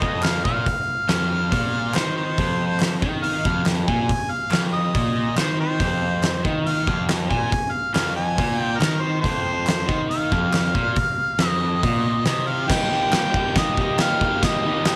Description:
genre	garage rock duo or trio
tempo	140 BPM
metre	4/4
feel	straight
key	F minor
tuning	A4 = 440 Hz
part	clear harmonica	melody	0.0-15.0 s	Bb4 to Ab5	-27 LUFS	equal	overdrive
part	overdriven electric guitar	riff	0.0-15.0 s	F2 to G4	-26 LUFS	equal	none
part	oversized low-tuned drum kit	drums	0.0-15.0 s	crash cymbal, hi-hat, kick drum, snare drum	-26 LUFS	equal	none
part	group handclap	percussion	0.2-15.0 s	none	-36 LUFS	equal	none
room	light reverb, small room ambience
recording	none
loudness	-22 LUFS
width	mono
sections	0.0-12.7 A section; 12.7-15.0 B section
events	none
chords	0.0 F5; 12.7 Eb

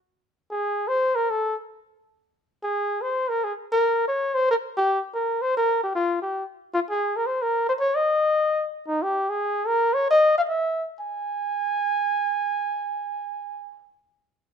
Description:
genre	jazz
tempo	225 BPM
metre	4/4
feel	swing 60% on 8ths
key	Ab major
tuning	A4 = 435 Hz
part	mellow flugelhorn	solo	0.5-13.9 s	Eb4 to Ab5	-22 LUFS	equal	none
room	light reverb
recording	minimal, uncompressed stereo recording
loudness	-22 LUFS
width	side -7 dB against mid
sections	0.0-6.7 A section; 6.7-11.0 B section; 11.0-13.1 C section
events	none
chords	none

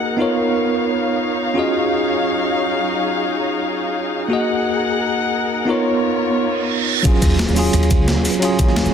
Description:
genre	liquid drum and bass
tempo	175 BPM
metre	4/4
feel	swing 54% on 16ths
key	Eb minor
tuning	A4 = 439 Hz
part	bell-like tine electric piano	accompaniment	0.0-8.9 s	Gb3 to Eb5	-19 LUFS	right 1 dB	fast stereo tremolo, dub echo
part	muted chamber string section	sustained chords	0.0-7.0 s	Gb3 to Gb5	-21 LUFS	left 2 dB	sidechain pumping
part	reverse cymbal and impact	sound effects	6.5-8.4 s	none	-25 LUFS	right 5 dB	none
part	breakbeat sampler-style drum kit	drums	7.0-8.9 s	hi-hat, shaker, snare drum	-22 LUFS	left 1 dB	overdrive
part	crunchy breakbeat drum kit	drums	7.0-8.9 s	hi-hat, ride cymbal, snare drum	-28 LUFS	equal	high-pass filter on cymbals, high-pass filter on hats, high-pass filter on snare, high-pass filter on room
part	electronic kick drum	drums	7.1-8.7 s	none	-15 LUFS	equal	none
part	upright bass	bass	7.2-8.9 s	Db2 to Eb2	-19 LUFS	equal	tube saturation
room	moderate concert hall reverb, RT60 2.3 s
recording	dense, heavily limited modern master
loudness	-16 LUFS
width	side -8 dB against mid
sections	0.0-7.0 A section; 7.0-8.9 B section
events	reverse cymbal 6.5-7.0; drop 7.0-8.9; impact 7.0-8.4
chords	0.2 Db13; 1.6 Ebm11; 4.3 Gb69; 5.7 Db13; 7.0 Ebm11

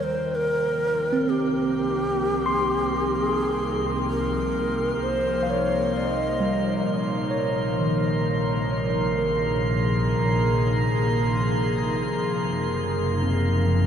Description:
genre	ambient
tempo	64 BPM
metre	3/4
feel	straight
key	unclear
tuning	A4 = 440 Hz
part	breathy bright long shakuhachi	melody	0.0-6.9 s	G4 to Eb5	-26 LUFS	equal	tape echo
part	airy breathy pad	sustained chords	0.0-13.9 s	C3 to G5	-28 LUFS	equal	chorus
part	tine electric piano	arpeggios	0.0-13.9 s	Eb3 to C6	-28 LUFS	right 1 dB	fast stereo tremolo, tape echo
part	rich studio double bass section	bass	0.0-13.9 s	Gb1 to Eb2	-28 LUFS	left 1 dB	none
part	drifting glass-harmonics texture	texture	0.0-13.9 s	Bb4 to C6	-30 LUFS	right 3 dB	chorus, built-in reverb
room	wet huge ambient reverb, RT60 8.8 s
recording	in a vast, echoing space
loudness	-21 LUFS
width	side -8 dB against mid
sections	0.0-13.9 A section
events	fade-in on analog synth pad 0.0-13.9; fade-in on double bass section 0.0-13.9; fade-in on synth texture 0.0-13.9; fade-out on tine electric piano 0.0-13.9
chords	0.0 Eb6; 1.3 Cm7; 6.9 Bbm7; 12.5 Gb69

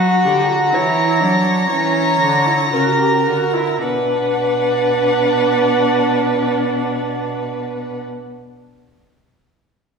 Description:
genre	classical, baroque-style fugue for string quartet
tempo	54-65 BPM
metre	4/4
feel	straight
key	B minor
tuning	A4 = 438 Hz
part	rich violin	melody	0.0-8.0 s	F#5 to A#5	-20 LUFS	left 1 dB	none
part	rich violin	second line	0.0-8.0 s	F#4 to C#5	-18 LUFS	right 2 dB	none
part	rich viola	accompaniment	0.0-8.0 s	C#4 to G4	-22 LUFS	equal	none
part	rich cello	bass	0.0-8.0 s	B2 to F#3	-21 LUFS	right 1 dB	none
room	wet recital hall reverb, RT60 1.5 s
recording	heard from further back in the room, small room ambience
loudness	-14 LUFS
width	side -5 dB against mid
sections	0.0-3.8 A section; 3.8-8.3 B section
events	slowing down 0.0-3.8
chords	0.0 F#7; 3.8 Bm

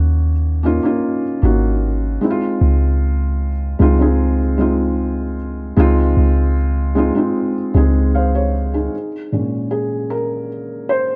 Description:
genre	contemporary R&B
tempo	76 BPM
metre	4/4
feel	straight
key	Db major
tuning	A4 = 441 Hz
part	felt-muted upright piano	accompaniment	0.0-11.2 s	Bb2 to F5	-21 LUFS	equal	none
part	clean 808-style bass	bass	0.0-8.9 s	Ab1 to Eb2	-18 LUFS	equal	none
room	light reverb, studio reverb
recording	dark, warm production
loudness	-17 LUFS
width	mono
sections	0.0-8.9 A section; 8.9-11.2 B section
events	felt piano solo 8.9-11.2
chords	0.0 Ab7sus4; 2.2 Dbmaj9; 8.9 Bbm7

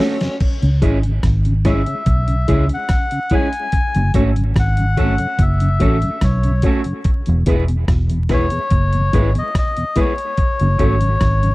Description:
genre	roots reggae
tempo	72 BPM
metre	4/4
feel	straight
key	unclear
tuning	A4 = 440 Hz
part	electric guitar through a small old amp	accompaniment	0.0-10.9 s	F#3 to A4	-25 LUFS	right 4 dB	tape echo
part	mellow tonewheel organ	accompaniment	0.0-11.5 s	E2 to F#4	-26 LUFS	equal	chorus vibrato, slow rotary speaker, tape echo
part	mellow reed electric piano	stabs	0.0-11.0 s	E4 to C#5	-22 LUFS	left 3 dB	none
part	dusty soul sampler-style drum kit	drums	0.0-11.5 s	crash cymbal, hi-hat, kick drum, rim click, snare drum	-18 LUFS	equal	none
part	vintage muted fingered electric bass	bass	0.6-11.5 s	E1 to C#2	-16 LUFS	equal	none
part	melodica	melody	1.7-11.5 s	C#5 to G#5	-22 LUFS	left 3 dB	tape echo
room	little or no reverb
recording	dry, close 1970s-style studio recording, vinyl crackle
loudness	-14 LUFS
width	side -20 dB against mid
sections	0.0-11.5 A section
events	drum fill 0.0-0.4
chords	0.4 C#m; 3.7 F#m; 7.1 E; 10.4 F#m

